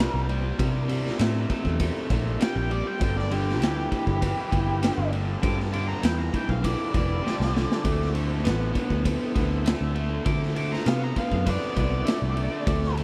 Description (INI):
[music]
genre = blues rock power trio and southern rock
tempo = 99 BPM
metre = 4/4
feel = straight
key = G mixolydian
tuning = A4 = 437 Hz
[part]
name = octave-fuzz lead guitar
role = melody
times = 0.0-12.9 s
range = G4 to D6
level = -35 LUFS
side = equal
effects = distortion, tape echo
[part]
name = overdriven tonewheel organ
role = sustained chords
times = 0.0-13.0 s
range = B3 to B4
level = -41 LUFS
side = equal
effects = none
[part]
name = overdriven electric guitar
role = riff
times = 0.0-13.0 s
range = G2 to B3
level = -33 LUFS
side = equal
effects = none
[part]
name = vintage muted picked electric bass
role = bass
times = 0.0-13.0 s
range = F1 to D3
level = -29 LUFS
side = equal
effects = none
[part]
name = raw garage drum kit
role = drums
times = 0.0-13.0 s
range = kick drum, ride cymbal, snare drum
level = -30 LUFS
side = equal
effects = none
[sound]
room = small room ambience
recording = none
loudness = -25 LUFS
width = mono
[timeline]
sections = 0.0-13.0 A section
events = drum fill 7.2-7.9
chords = 0.0 C7; 3.0 G7; 7.9 D7